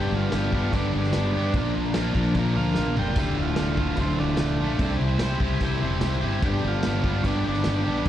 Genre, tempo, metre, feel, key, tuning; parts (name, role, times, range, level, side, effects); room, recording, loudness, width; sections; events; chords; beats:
garage rock duo or trio; 147 BPM; 4/4; straight; A4 = 441 Hz
combo organ; melody; 0.0-8.1 s; A3 to G5; -31 LUFS; right 2 dB
crunchy overdriven guitar; riff; 0.0-8.1 s; D2 to C5; -25 LUFS; equal; spring reverb, slapback echo
fuzz fingered electric bass; bass; 0.0-8.1 s; D1 to Bb2; -27 LUFS; equal; overdrive
vintage drum kit; drums; 0.3-8.1 s; crash cymbal, kick drum, snare drum, splash cymbal, toms; -29 LUFS; equal
light reverb; live gig heard through the venue's PA, club reverb; -22 LUFS; side -11 dB against mid
0.0-8.1 A section
drum fill 2.8-3.2
0.0 G; 1.5 Bb; 3.2 Dm; 4.8 C; 6.4 G
0.32 0.73 1.13 | 1.54 1.95 2.35 2.76 | 3.17 3.57 3.98 4.39 | 4.79 5.20 5.61 6.02 | 6.42 6.83 7.24 7.65 | 8.06